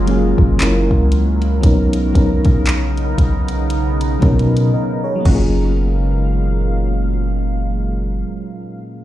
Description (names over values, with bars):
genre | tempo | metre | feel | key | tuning
contemporary R&B | 58 BPM | 4/4 | swing 58% on 16ths | F# major | A4 = 440 Hz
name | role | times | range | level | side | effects
mellow FM electric piano | accompaniment | 0.0-9.0 s | F#3 to D#5 | -20 LUFS | left 1 dB | chorus, tremolo
deep dark ambient pad | sustained chords | 0.0-8.2 s | A#2 to E#5 | -23 LUFS | right 2 dB | chorus, built-in reverb
long sustained 808-style bass | bass | 0.0-8.2 s | F#1 to B2 | -17 LUFS | equal | none
glassy wavetable pluck | texture | 0.0-8.2 s | F#4 to C#5 | -37 LUFS | right 5 dB | none
smooth R&B drum kit | drums | 0.1-5.5 s | crash cymbal, handclaps, hi-hat, kick drum | -15 LUFS | equal | vintage 12-bit sampler grit
room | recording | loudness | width
little or no reverb | played on a big sound system in a bare room, large studio reverb | -14 LUFS | side -14 dB against mid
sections
0.0-5.8 A section; 5.8-9.0 B section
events
silent gap 4.7-5.8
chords
0.0 F#maj9; 0.6 F#7; 1.6 Bmaj9; 5.3 F#maj9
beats
0.60 | 1.63 2.67 3.70 4.74 | 5.77 6.81 7.84 8.88